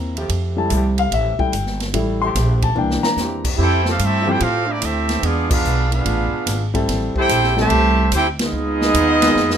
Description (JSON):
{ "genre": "jazz, big band swing", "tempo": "146 BPM", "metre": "4/4", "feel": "swing 66% on 8ths", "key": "F major", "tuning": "A4 = 440 Hz", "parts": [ { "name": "warm grand piano", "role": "accompaniment", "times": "0.0-9.3 s", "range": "E3 to C6", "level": "-21 LUFS", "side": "left 4 dB", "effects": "none" }, { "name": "upright bass", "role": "bass", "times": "0.0-9.6 s", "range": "G1 to A2", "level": "-20 LUFS", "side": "right 1 dB", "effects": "none" }, { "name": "clear trombone section", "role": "sustained chords", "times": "0.2-3.6 s", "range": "E3 to G4", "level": "-29 LUFS", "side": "right 2 dB", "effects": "none" }, { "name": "swinging big-band drum kit", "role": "drums", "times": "0.2-9.6 s", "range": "crash cymbal, hi-hat, kick drum, ride cymbal, snare drum", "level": "-24 LUFS", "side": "equal", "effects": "none" }, { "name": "clear trumpet section", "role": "melody", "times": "3.6-9.6 s", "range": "Bb3 to A5", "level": "-19 LUFS", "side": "right 1 dB", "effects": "none" }, { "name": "warm trombone section", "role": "second line", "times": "3.6-9.6 s", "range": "C3 to G4", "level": "-21 LUFS", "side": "right 2 dB", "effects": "none" } ], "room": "moderate club ambience, RT60 0.5 s", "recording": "minimal, uncompressed stereo recording", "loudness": "-16 LUFS", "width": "side -8 dB against mid", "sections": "0.0-3.6 A section; 3.6-9.6 B section", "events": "grand piano solo 0.0-3.6; drum fill 2.8-3.2, 9.4; band accent 5.4, 8.3", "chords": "0.3 Fmaj9; 2.8 C7; 3.6 Fmaj9; 5.2 E7b9; 6.9 Am7; 8.5 Db9" }